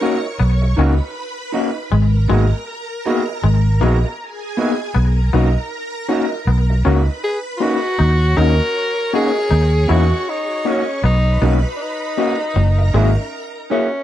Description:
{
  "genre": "reggae",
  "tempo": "79 BPM",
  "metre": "4/4",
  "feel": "swing 60% on 16ths",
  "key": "unclear",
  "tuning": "A4 = 440 Hz",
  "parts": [
    { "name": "clear tenor saxophone", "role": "melody", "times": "0.0-0.4, 7.2-14.0 s", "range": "C#4 to A#4", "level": "-21 LUFS", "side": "left 1 dB", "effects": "tape echo" },
    { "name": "string machine, violins", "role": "second line", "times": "0.0-14.0 s", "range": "G#4 to C#6", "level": "-29 LUFS", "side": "right 1 dB", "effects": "ensemble chorus" },
    { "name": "bell-like tine electric piano", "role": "accompaniment", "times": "0.0-13.9 s", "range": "A#3 to G#4", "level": "-19 LUFS", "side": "left 4 dB", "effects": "medium stereo tremolo" },
    { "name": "electric guitar through a small old amp", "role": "stabs", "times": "0.0-13.9 s", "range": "B3 to E5", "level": "-24 LUFS", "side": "right 4 dB", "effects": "spring reverb" },
    { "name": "twangy electric guitar", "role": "riff", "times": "0.4-13.1 s", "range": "F#3 to E4", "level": "-24 LUFS", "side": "left 9 dB", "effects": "slapback echo" },
    { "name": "vintage muted fingered electric bass", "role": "bass", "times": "0.4-13.2 s", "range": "F#1 to E2", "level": "-14 LUFS", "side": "equal", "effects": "none" }
  ],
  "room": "little or no reverb",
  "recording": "dry, close 1970s-style studio recording",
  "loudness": "-15 LUFS",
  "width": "side -12 dB against mid",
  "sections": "0.0-14.0 A section",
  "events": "none",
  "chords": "0.0 Bmaj7; 1.9 G#m7; 5.0 Bmaj7; 8.0 D#m7; 11.0 Bmaj7; 12.6 F#7"
}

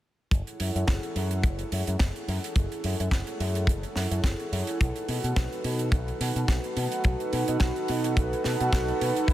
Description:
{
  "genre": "nu-disco, nu disco",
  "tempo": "107 BPM",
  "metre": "4/4",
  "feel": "swing 55% on 16ths",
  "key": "F# dorian",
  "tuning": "A4 = 444 Hz",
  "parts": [
    { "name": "warm analog pad", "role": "accompaniment", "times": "0.3-9.3 s", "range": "D#4 to F#5", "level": "-30 LUFS", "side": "right 1 dB", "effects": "chorus, diffuse ambient delay" },
    { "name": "picked electric bass with an envelope filter", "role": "bass", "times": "0.3-9.3 s", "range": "F#1 to B2", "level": "-29 LUFS", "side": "equal", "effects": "none" },
    { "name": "kick drum", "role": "drums", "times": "0.3-9.3 s", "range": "none", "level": "-23 LUFS", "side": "equal", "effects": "studio reverb" },
    { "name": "tight funk drum kit", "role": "drums", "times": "0.3-9.3 s", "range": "hi-hat, snare drum", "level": "-35 LUFS", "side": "right 2 dB", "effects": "studio reverb" },
    { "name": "warm chamber violin section", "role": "sustained chords", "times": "9.3 s", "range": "E4", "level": "-37 LUFS", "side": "left 1 dB", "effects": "sidechain pumping" }
  ],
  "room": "light reverb, small room ambience",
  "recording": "none",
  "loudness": "-25 LUFS",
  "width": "side -14 dB against mid",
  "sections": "0.3-9.3 A section",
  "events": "none",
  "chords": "0.3 F#m9; 4.8 B7"
}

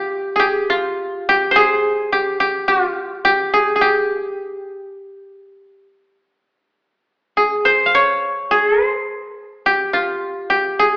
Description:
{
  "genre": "japanese traditional, Japanese chamber music",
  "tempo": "53 BPM",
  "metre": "2/4",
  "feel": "rubato",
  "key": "unclear",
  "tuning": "A4 = 442 Hz",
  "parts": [
    { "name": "koto", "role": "solo", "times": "0.0-11.0 s", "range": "F4 to F5", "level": "-15 LUFS", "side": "equal", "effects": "none" }
  ],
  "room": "moderate recital hall reverb, RT60 1.6 s",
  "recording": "recorded in a church or concert hall, AM radio sound",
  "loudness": "-14 LUFS",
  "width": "side -24 dB against mid",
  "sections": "0.0-11.0 A section",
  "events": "none",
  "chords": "none"
}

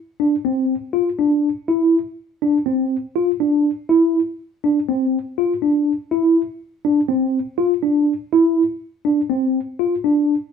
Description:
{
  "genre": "progressive instrumental, progressive",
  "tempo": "244 BPM (eighths)",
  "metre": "9/8",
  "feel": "straight",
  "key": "D minor",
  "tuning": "A4 = 441 Hz",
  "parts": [
    { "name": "mellow tine electric piano", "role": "solo", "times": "0.2-10.3 s", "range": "C4 to F4", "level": "-16 LUFS", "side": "equal", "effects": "medium stereo tremolo" }
  ],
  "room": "wet studio reverb, RT60 0.6 s",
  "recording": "band playing live in one room",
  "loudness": "-17 LUFS",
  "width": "side -6 dB against mid",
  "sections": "0.0-10.5 A section",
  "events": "none",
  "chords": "none"
}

